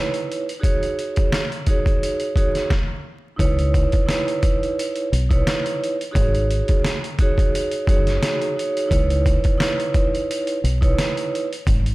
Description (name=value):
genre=hip hop, boom-bap hip-hop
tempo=87 BPM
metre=4/4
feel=swing 55% on 16ths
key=C# minor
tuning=A4 = 442 Hz
part: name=vibraphone with medium mallets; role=accompaniment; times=0.0-11.5 s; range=D#4 to C#5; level=-23 LUFS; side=right 2 dB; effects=cassette tape, high-pass filter, low-pass filter
part: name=trip hop sampler-style drum kit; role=drums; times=0.1-11.9 s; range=hi-hat, kick drum, snare drum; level=-20 LUFS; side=equal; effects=none
part: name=deep dub fingered electric bass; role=bass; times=3.4-11.9 s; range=F#1 to C#2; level=-20 LUFS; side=equal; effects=none
room=light reverb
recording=vinyl crackle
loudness=-18 LUFS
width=side -20 dB against mid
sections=0.0-3.4 A section; 3.4-11.9 B section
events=break 0.0-3.4; stop 2.7-3.4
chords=0.0 C#m9; 0.6 G#7sus4; 3.4 C#m9; 6.2 G#7sus4; 8.9 C#m9